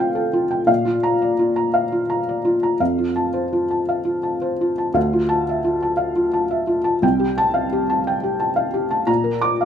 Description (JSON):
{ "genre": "neoclassical minimalist piano", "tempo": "57 BPM (dotted quarters)", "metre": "6/8", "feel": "uneven beats, rubato", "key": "F major", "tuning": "A4 = 440 Hz", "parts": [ { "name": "felt-muted upright piano", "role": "solo", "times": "0.0-9.7 s", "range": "C2 to D6", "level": "-17 LUFS", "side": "equal", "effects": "none" } ], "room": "light reverb", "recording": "minimal, uncompressed stereo recording", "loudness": "-17 LUFS", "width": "side -8 dB against mid", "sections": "0.0-5.0 A section; 5.0-9.7 A section", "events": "none", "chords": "0.0 Fadd9/C; 0.7 Bb; 2.8 F; 5.0 Dmadd9; 7.0 Fadd9/C; 9.1 Bb" }